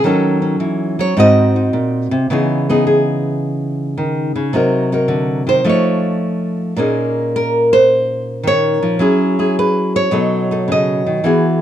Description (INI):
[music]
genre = solo jazz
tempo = 107 BPM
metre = 4/4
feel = swing 69% on 8ths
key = unclear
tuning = A4 = 440 Hz
[part]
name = nylon-string guitar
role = solo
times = 0.0-11.6 s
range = Ab2 to Eb5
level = -13 LUFS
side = equal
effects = none
[sound]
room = moderate club reverb, RT60 0.5 s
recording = dark, warm production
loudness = -13 LUFS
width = side -11 dB against mid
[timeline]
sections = 0.0-2.3 A section; 2.3-11.6 A section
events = nylon-string guitar solo 0.0-11.6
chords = 0.0 Ebm7b5; 1.2 Ab7; 2.3 Dbm9; 4.5 Cm7b5; 5.6 Faug7; 6.8 Bbm11; 9.0 Gbsus2; 10.1 B9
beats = | 0.04 0.60 1.16 1.72 | 2.28 2.84 3.40 3.96 | 4.52 5.08 5.64 6.20 | 6.76 7.32 7.87 8.43 | 8.99 9.55 10.11 10.66 | 11.22